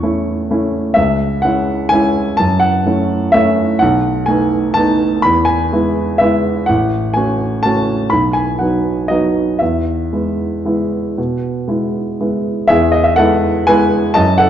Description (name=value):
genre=classical, piano waltz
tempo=111-133 BPM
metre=3/4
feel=rubato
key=E major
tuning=A4 = 439 Hz
part: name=warm baby grand piano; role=solo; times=0.0-14.5 s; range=A1 to C#6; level=-12 LUFS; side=equal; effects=none
room=moderate scoring stage reverb, RT60 1.6 s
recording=dark, warm production, nothing above 7.6 kHz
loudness=-12 LUFS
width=side -10 dB against mid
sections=0.0-12.7 A section; 12.7-14.5 A section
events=none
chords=0.0 A; 1.0 C#m; 2.4 F#m7; 3.8 B7; 5.2 E; 6.7 F#m/A; 8.1 B; 9.6 E